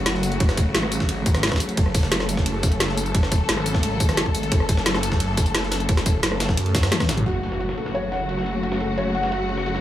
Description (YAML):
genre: dark technical drum and bass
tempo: 175 BPM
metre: 4/4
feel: straight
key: F# minor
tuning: A4 = 441 Hz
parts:
  - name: warm studio string section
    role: sustained chords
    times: 0.0-9.8 s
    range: C#3 to A4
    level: -26 LUFS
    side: left 1 dB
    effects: sidechain pumping
  - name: phased detuned saw bass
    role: bass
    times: 0.0-9.8 s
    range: F#1 to F#2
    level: -26 LUFS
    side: equal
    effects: phaser, overdrive, sidechain pumping
  - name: drum and bass drum kit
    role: drums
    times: 0.1-7.2 s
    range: hi-hat, rim click, snare drum, tambourine, toms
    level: -24 LUFS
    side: equal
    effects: low-pass filter on snare, low-pass filter on hats, low-pass filter on perc, low-pass filter on toms, low-pass filter on room
  - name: jungle sampler-style drum kit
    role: drums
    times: 0.1-9.8 s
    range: hi-hat, ride cymbal, snare drum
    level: -30 LUFS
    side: right 1 dB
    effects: high-pass filter on snare, low-pass filter on snare, high-pass filter on cymbals, low-pass filter on cymbals, high-pass filter on hats, low-pass filter on hats, high-pass filter on room, low-pass filter on room
  - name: electronic kick drum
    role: drums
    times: 0.4-7.1 s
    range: none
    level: -21 LUFS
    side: equal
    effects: overdrive
  - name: felt-muted upright piano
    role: arpeggios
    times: 7.3-9.7 s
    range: F#4 to F#5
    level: -27 LUFS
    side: equal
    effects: sidechain pumping, low-pass filter, dub echo
  - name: impact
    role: sound effects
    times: 7.3-8.6 s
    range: none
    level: -33 LUFS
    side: equal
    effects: none
room: light reverb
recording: small room ambience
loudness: -19 LUFS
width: side -12 dB against mid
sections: 0.0-7.3 A section; 7.3-9.8 B section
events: drop 0.0-7.3; drum fill 6.9-7.3; impact 7.3-8.6; filter sweep on felt piano 7.3-9.8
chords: 0.0 F#m